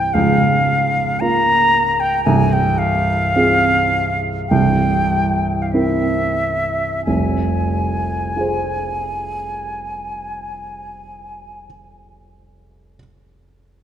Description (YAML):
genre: classical, romantic duo for flute and grand piano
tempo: 43-61 BPM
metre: 4/4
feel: rubato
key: F minor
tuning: A4 = 441 Hz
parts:
  - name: concert flute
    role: melody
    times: 0.0-11.6 s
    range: E5 to Bb5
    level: -18 LUFS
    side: left 1 dB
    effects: none
  - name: dark baby grand piano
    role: accompaniment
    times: 0.0-13.8 s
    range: C1 to C5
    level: -18 LUFS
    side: right 2 dB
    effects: none
room: wet concert hall reverb, RT60 2.5 s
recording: dark, warm production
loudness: -15 LUFS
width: side -9 dB against mid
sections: 0.0-7.1 A section; 7.1-12.2 B section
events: slowing down 0.0-7.1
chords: 0.1 Bbm/Db; 2.3 Fm/C; 4.5 C7; 7.1 Fm